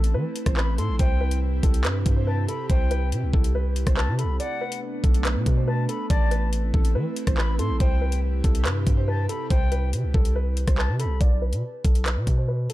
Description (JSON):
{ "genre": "hip hop, drill", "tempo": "141 BPM", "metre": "4/4", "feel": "half-time", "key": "unclear", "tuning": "A4 = 440 Hz", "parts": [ { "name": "dark grand piano", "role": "melody", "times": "0.0-12.7 s", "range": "A4 to D5", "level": "-32 LUFS", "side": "right 1 dB", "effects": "low-pass filter" }, { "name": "airy breathy pad", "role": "sustained chords", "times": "0.0-11.2 s", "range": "C3 to G4", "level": "-33 LUFS", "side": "right 1 dB", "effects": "chorus" }, { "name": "long sustained 808-style bass", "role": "bass", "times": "0.0-12.7 s", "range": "A1 to E3", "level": "-24 LUFS", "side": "equal", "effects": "none" }, { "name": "drill drum kit", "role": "drums", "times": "0.0-12.7 s", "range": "handclaps, hi-hat, kick drum, rim click", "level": "-22 LUFS", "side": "equal", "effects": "none" }, { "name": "reedy silver concert flute", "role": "second line", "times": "0.6-11.2 s", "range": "F#5 to C6", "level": "-35 LUFS", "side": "left 5 dB", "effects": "ping-pong delay" } ], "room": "digital ambience", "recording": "dark, warm production", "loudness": "-21 LUFS", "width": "side -16 dB against mid", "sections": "0.0-11.2 A section; 11.2-12.7 B section", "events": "break 4.4-4.8", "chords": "0.0 Am; 1.0 C; 4.4 Bm7; 6.1 Am; 7.8 C; 11.2 N.C." }